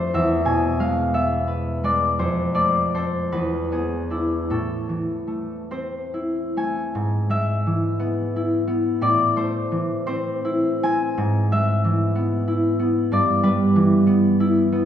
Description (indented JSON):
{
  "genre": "classical, solo harp piece",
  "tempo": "46-64 BPM (dotted quarters)",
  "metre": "6/8",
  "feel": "rubato",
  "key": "unclear",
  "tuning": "A4 = 442 Hz",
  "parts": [
    { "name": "concert harp", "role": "solo", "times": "0.0-14.9 s", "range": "E2 to G#5", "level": "-19 LUFS", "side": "equal", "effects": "none" }
  ],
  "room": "wet concert hall reverb, RT60 2.0 s",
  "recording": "recorded in a church or concert hall",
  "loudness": "-19 LUFS",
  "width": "side -10 dB against mid",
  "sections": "0.0-7.0 A section; 7.0-14.9 B section",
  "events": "none",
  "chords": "0.1 E; 2.2 F; 3.3 E7; 4.5 Am; 7.0 E/G#; 9.0 Am; 11.2 E/G#; 13.1 Em/G"
}